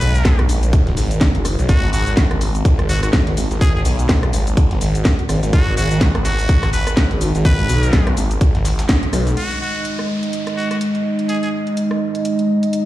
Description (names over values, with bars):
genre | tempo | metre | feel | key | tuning
bass house | 125 BPM | 4/4 | swing 58% on 16ths | G# minor | A4 = 440 Hz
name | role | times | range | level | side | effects
trumpet with straight mute | melody | 0.0-11.5 s | F#4 to B4 | -25 LUFS | left 1 dB | ping-pong delay
dark analog pad | sustained chords | 0.0-12.9 s | G#3 to F#5 | -24 LUFS | right 1 dB | chorus, sidechain pumping
phased detuned saw bass | bass | 0.0-9.4 s | F#1 to B1 | -17 LUFS | equal | phaser, sidechain pumping
dusty soul sampler-style drum kit | drums | 0.0-9.4 s | hi-hat, snare drum | -34 LUFS | right 1 dB | none
garage drum kit | drums | 0.0-12.8 s | cabasa, hi-hat, rim click, snare drum | -23 LUFS | equal | none
electronic kick drum | drums | 0.2-9.0 s | none | -14 LUFS | equal | none
downlifter | sound effects | 9.4-12.9 s | none | -31 LUFS | equal | none
room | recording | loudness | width
light reverb | played on a big sound system in a bare room, large studio reverb | -14 LUFS | side -15 dB against mid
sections
0.0-9.4 A section; 9.4-12.9 B section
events
drop 0.0-9.4; band accent 8.9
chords
0.0 G#5